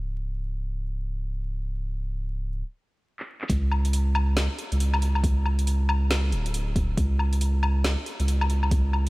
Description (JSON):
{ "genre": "deep dubstep", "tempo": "138 BPM", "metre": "4/4", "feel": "swing 61% on 16ths, half-time", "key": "unclear", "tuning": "A4 = 436 Hz", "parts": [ { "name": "soft dub sub bass", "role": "bass", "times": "0.0-9.1 s", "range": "C#1 to C#2", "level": "-24 LUFS", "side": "equal", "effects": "none" }, { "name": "garage drum kit", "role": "drums", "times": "3.2-9.1 s", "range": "handclaps, hi-hat, snare drum, woodblock", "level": "-30 LUFS", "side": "left 1 dB", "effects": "overdrive, low-pass filter on snare, low-pass filter on hats, low-pass filter on perc" }, { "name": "electronic kick drum", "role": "drums", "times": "3.5-8.8 s", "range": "none", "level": "-25 LUFS", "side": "equal", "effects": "overdrive" } ], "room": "little or no reverb", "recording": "vinyl crackle", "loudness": "-23 LUFS", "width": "side -22 dB against mid", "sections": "0.0-3.5 A section; 3.5-9.1 B section", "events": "stop 2.6-3.5; drum fill 3.2-3.5; drop 3.5-9.1", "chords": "none" }